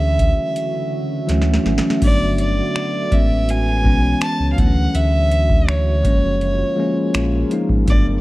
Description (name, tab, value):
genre	contemporary R&B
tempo	82 BPM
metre	4/4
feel	straight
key	unclear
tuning	A4 = 440 Hz
part	rich fiddle	melody	0.0-8.1 s	C#5 to A5	-23 LUFS	right 1 dB	none
part	bell-like tine electric piano	accompaniment	0.0-8.2 s	E3 to D#4	-21 LUFS	left 2 dB	none
part	deep dark ambient pad	sustained chords	0.0-8.2 s	D3 to E5	-27 LUFS	right 2 dB	chorus, built-in reverb
part	sub bass with octave	bass	0.0-8.2 s	F#1 to D2	-19 LUFS	equal	none
part	booming analog drum machine	drums	0.2-8.1 s	crash cymbal, finger snaps, hi-hat, kick drum, snare drum	-18 LUFS	equal	none
room	light reverb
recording	worn, warbling old tape, cassette tape, warbly pitch drift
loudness	-15 LUFS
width	side -18 dB against mid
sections	0.0-2.0 A section; 2.0-8.2 B section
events	drum fill 1.3-2.0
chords	0.0 Dmaj9; 2.0 Gmaj9; 3.1 Amaj9; 4.6 Dmaj9; 6.0 F#maj9